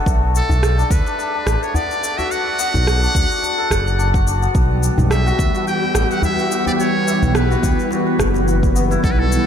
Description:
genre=organic downtempo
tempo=107 BPM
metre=4/4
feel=swing 55% on 16ths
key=B minor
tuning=A4 = 440 Hz
part: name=santur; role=arpeggios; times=0.0-9.5 s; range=A3 to B4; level=-23 LUFS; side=left 3 dB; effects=diffuse ambient delay
part: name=smooth gliding synth bass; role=bass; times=0.1-9.4 s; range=F#1 to D2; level=-18 LUFS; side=equal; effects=sidechain pumping
part: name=electronic kick drum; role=drums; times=0.1-9.2 s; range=none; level=-19 LUFS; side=equal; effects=none
part: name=organic electronic drum kit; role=drums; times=0.1-9.4 s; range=rim click, shaker, toms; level=-26 LUFS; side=right 1 dB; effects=overdrive
part: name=trumpet with metal mute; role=melody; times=0.4-9.5 s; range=A4 to G5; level=-23 LUFS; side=right 1 dB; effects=diffuse ambient delay
part: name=djembe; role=percussion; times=0.5-9.0 s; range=none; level=-28 LUFS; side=left 1 dB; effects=none
part: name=wind-like tuned noise texture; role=texture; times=5.3-9.5 s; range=B3 to B4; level=-29 LUFS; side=equal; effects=built-in reverb
part: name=warm analog pad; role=sustained chords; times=4.6-9.5 s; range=E3 to G5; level=-21 LUFS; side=equal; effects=chorus, sidechain pumping
room=moderate cathedral reverb, RT60 6.9 s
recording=dreamy mix soaked in reverb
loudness=-15 LUFS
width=side -8 dB against mid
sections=0.0-9.5 A section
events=none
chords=0.0 Bm7; 4.5 Emadd9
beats=| 0.06 0.62 1.18 1.75 | 2.31 2.87 3.43 3.99 | 4.55 5.11 5.67 6.23 | 6.79 7.35 7.91 8.47 | 9.03

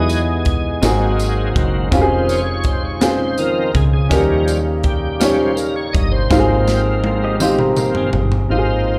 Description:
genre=slow gospel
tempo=55 BPM (dotted quarters)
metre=6/8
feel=straight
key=Ab major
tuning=A4 = 440 Hz
part: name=warm upright piano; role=accompaniment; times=0.0-9.0 s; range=Ab2 to Db5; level=-22 LUFS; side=equal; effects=slapback echo
part: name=bright tonewheel organ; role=sustained chords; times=0.0-9.0 s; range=Eb3 to D#5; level=-24 LUFS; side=equal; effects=slow rotary speaker, overdrive, chorus vibrato
part: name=mellow French horn section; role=sustained chords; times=0.0-8.5 s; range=Db3 to D#5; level=-30 LUFS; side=equal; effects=none
part: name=fingered electric bass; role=bass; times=0.0-9.0 s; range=F1 to E2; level=-22 LUFS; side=equal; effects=none
part: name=crisp fusion drum kit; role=drums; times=0.1-8.5 s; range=hi-hat, kick drum, snare drum, toms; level=-23 LUFS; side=equal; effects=none
part: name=tambourine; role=percussion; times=0.1-8.1 s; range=none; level=-32 LUFS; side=equal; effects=none
part: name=clean electric guitar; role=second line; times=7.2-8.5 s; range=C4 to Eb5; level=-28 LUFS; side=equal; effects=slapback echo
room=light reverb, small room ambience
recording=live gig heard through the venue's PA, club reverb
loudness=-17 LUFS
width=mono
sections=0.0-8.5 A section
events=tonewheel organ solo 0.0-8.5; drum fill 6.3-8.5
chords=0.0 Emaj7; 0.8 Ab7; 1.9 Dbmaj7/F; 4.1 Eb7; 6.3 Ab6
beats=0.83 | 1.92 3.02 | 4.11 5.21 | 6.31 7.40 | 8.50

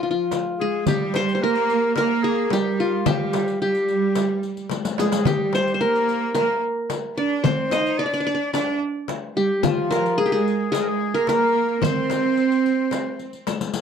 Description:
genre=Turkish makam ensemble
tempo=110 BPM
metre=4/4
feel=straight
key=C makam ussak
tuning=A4 = 441 Hz
part: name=qanun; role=melody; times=0.0-13.4 s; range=F4 to Eb5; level=-23 LUFS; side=left 1 dB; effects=none
part: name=bright studio cello section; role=second line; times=0.0-13.5 s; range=F3 to Eb4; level=-25 LUFS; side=right 8 dB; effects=none
part: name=clear clarinet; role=second line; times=0.0-13.5 s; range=F4 to D5-26c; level=-27 LUFS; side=left 5 dB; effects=none
part: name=darbuka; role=percussion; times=0.1-13.6 s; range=none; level=-29 LUFS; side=right 15 dB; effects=none
part: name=frame drum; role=percussion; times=0.3-13.6 s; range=none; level=-27 LUFS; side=left 14 dB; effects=none
part: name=riq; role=percussion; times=0.3-13.8 s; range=none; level=-31 LUFS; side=left 7 dB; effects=none
room=light reverb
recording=dry, close 1970s-style studio recording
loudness=-19 LUFS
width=side -7 dB against mid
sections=0.0-13.8 A section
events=drum fill 4.7-5.3, 13.5-13.8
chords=none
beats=0.32 | 0.87 1.42 1.97 2.51 | 3.06 3.61 4.16 4.71 | 5.26 5.80 6.35 6.90 | 7.45 8.00 8.54 9.09 | 9.64 10.19 10.73 11.28 | 11.83 12.37 12.92 13.47

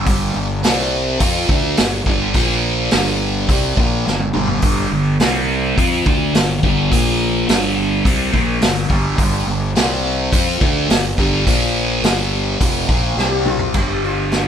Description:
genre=psychedelic rock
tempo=105 BPM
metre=4/4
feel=straight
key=G minor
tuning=A4 = 439 Hz
part: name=thick fuzz guitar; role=riff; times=0.0-14.5 s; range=F2 to F4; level=-18 LUFS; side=equal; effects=distortion, phaser
part: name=fuzz fingered electric bass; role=bass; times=0.0-14.5 s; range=F1 to F2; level=-22 LUFS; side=equal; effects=overdrive
part: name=vintage drum kit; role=drums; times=0.1-14.5 s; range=crash cymbal, hi-hat, kick drum, snare drum, toms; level=-18 LUFS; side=equal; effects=none
part: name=sitar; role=melody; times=13.2-14.5 s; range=F4 to G4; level=-22 LUFS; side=left 5 dB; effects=digital delay
room=moderate stone room reverb, RT60 1.3 s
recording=band playing live in one room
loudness=-14 LUFS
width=side -8 dB against mid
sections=0.0-13.7 A section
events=drum fill 4.1-4.6, 13.2-13.7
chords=0.0 G5; 0.6 C5; 1.2 G5; 2.3 Bb5; 2.9 Gm; 5.2 C5; 5.8 G5; 6.9 Bb5; 7.5 Gm; 9.8 C5; 10.3 G5; 11.5 Bb5; 12.0 Gm; 13.2 C5; 13.7 G5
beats=| 0.07 0.64 1.21 1.78 | 2.35 2.92 3.49 4.06 | 4.63 5.20 5.77 6.34 | 6.91 7.48 8.05 8.62 | 9.19 9.76 10.32 10.89 | 11.46 12.04 12.61 13.18 | 13.75 14.32

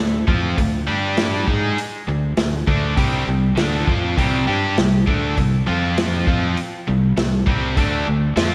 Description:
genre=classic rock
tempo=100 BPM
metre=4/4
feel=straight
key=unclear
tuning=A4 = 438 Hz
part: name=cranked stack guitar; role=riff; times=0.0-8.5 s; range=C3 to G#4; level=-24 LUFS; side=equal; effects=overdrive, spring reverb, slapback echo
part: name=crunchy overdriven guitar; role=riff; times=0.0-8.5 s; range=C3 to G#4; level=-26 LUFS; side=equal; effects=slapback echo
part: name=fingered electric bass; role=bass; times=0.0-8.5 s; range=C2 to G#2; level=-26 LUFS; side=equal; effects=none
part: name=vintage drum kit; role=drums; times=0.3-8.5 s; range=hi-hat, kick drum, snare drum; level=-24 LUFS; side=equal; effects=none
room=wet recital hall reverb, RT60 1.8 s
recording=big arena sound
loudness=-19 LUFS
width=mono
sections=0.0-8.5 A section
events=none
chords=0.0 Dm; 0.9 G5; 1.5 D5; 3.0 C5; 5.7 F5; 6.3 C5; 7.8 Dm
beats=| 0.58 1.18 1.78 2.38 | 2.98 3.58 4.17 4.77 | 5.37 5.97 6.57 7.17 | 7.77 8.37

